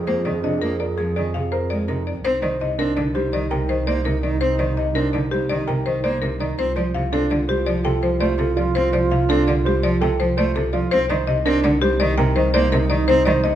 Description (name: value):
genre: classical, minimalist pattern music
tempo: 166 BPM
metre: 6/4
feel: straight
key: C dorian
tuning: A4 = 440 Hz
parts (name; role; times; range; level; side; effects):
- buzzing marimba with hard mallets; melody; 0.0-13.6 s; G4 to G5; -23 LUFS; left 6 dB; none
- alto flute; second line; 0.0-13.6 s; Eb4 to Ab4; -27 LUFS; right 5 dB; none
- warm chamber double bass section; bass; 0.0-13.6 s; C2 to F2; -24 LUFS; right 1 dB; none
- rich cello; accompaniment; 0.1-13.6 s; C3 to C4; -25 LUFS; right 1 dB; none
- warm baby grand piano; arpeggios; 0.4-13.5 s; D4 to C5; -25 LUFS; right 4 dB; none
room: moderate stone room reverb, RT60 1.1 s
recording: none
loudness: -18 LUFS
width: side -11 dB against mid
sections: 0.0-2.2 A section; 2.2-13.6 B section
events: none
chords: 0.0 Bb9sus4/F; 2.2 Cm7; 6.6 Dm7/C; 10.9 Cm7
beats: | 0.07 0.44 0.80 1.16 1.52 1.88 | 2.24 2.60 2.97 3.33 3.69 4.05 | 4.41 4.77 5.13 5.50 5.86 6.22 | 6.58 6.94 7.30 7.67 8.03 8.39 | 8.75 9.11 9.47 9.83 10.20 10.56 | 10.92 11.28 11.64 12.00 12.36 12.72 | 13.09 13.45